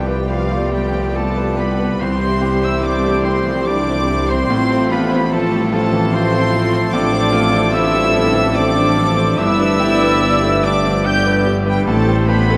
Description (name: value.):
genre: classical.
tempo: 72 BPM.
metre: 3/4.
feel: rubato.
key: unclear.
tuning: A4 = 440 Hz.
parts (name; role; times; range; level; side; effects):
bright baby grand piano; melody; 0.0-12.6 s; C2 to C5; -23 LUFS; equal; none.
warm symphonic violin section; melody; 0.0-12.6 s; F5 to G6; -27 LUFS; equal; none.
bright clarinet; second line; 0.0-12.6 s; F4 to G5; -27 LUFS; equal; none.
dark studio violin section; second line; 0.0-12.6 s; A3 to D5; -30 LUFS; equal; none.
mellow hollow silver concert flute; second line; 0.0-12.6 s; F5 to G6; -26 LUFS; equal; none.
dark symphonic viola section; accompaniment; 0.0-12.6 s; D3 to D4; -28 LUFS; equal; none.
clear trombone section; sustained chords; 0.0-12.6 s; A2 to A3; -29 LUFS; equal; none.
dark French horn section; sustained chords; 0.0-12.6 s; A3 to G4; -28 LUFS; equal; none.
warm trumpet; stabs; 0.0-12.6 s; A4 to D5; -28 LUFS; equal; none.
mellow tuba; bass; 0.0-12.6 s; G1 to C2; -26 LUFS; equal; none.
rich symphonic cello section; bass; 0.0-12.6 s; F3 to G4; -26 LUFS; equal; none.
warm symphonic double bass section; bass; 0.0-12.6 s; G1 to C2; -25 LUFS; equal; none.
room: wet cathedral reverb, RT60 5.1 s.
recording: in a vast, echoing space.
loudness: -16 LUFS.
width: mono.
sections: 0.0-12.6 A section.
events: none.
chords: 0.0 G7/C; 2.0 C; 4.5 F/A; 6.9 Dm7/A; 9.4 G; 11.9 Am7.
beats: 0.30 1.16 | 2.00 2.83 3.67 | 4.51 5.33 6.14 | 6.94 7.75 8.56 | 9.39 10.23 11.07 | 11.88.